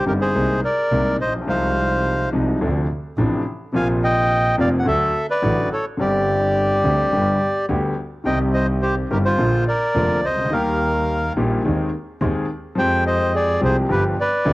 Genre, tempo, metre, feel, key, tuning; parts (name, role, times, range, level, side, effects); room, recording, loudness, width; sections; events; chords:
tango; 106 BPM; 4/4; rubato; A4 = 440 Hz
bandoneon; melody; 0.0-14.5 s; F4 to Ab5; -20 LUFS; equal
warm grand piano; accompaniment; 0.0-14.5 s; F1 to Ab4; -22 LUFS; left 1 dB; cassette tape
rich double bass; bass; 0.0-14.5 s; F1 to F2; -24 LUFS; right 1 dB
moderate spring reverb, RT60 1.6 s, small room ambience; home recording on cassette; -17 LUFS; side -20 dB against mid
0.0-14.5 A section
0.3 Abadd9/C; 1.5 Fm7/C; 2.6 Dm7; 3.7 Bbsus2; 4.9 D; 6.0 Gsus4; 7.1 G; 8.3 Cm; 9.4 Bb; 10.5 Eb; 11.6 Ab/Eb; 12.8 Fmadd9; 13.9 G7